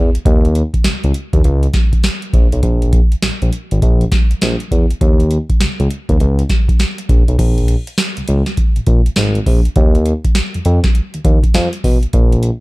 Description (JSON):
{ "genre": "R&B, new jack swing", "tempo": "101 BPM", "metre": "4/4", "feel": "swing 63% on 16ths", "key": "unclear", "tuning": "A4 = 440 Hz", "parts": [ { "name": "smooth synth bass", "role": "bass", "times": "0.0-12.5 s", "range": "Ab1 to F2", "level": "-14 LUFS", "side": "equal", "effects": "none" }, { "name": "booming analog drum machine", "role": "drums", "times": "0.1-12.6 s", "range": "crash cymbal, hi-hat, kick drum, snare drum", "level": "-13 LUFS", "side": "equal", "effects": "none" } ], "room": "little or no reverb", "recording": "dark, warm production", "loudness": "-12 LUFS", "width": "side -22 dB against mid", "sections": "0.0-7.4 A section; 7.4-12.6 B section", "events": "none", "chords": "none" }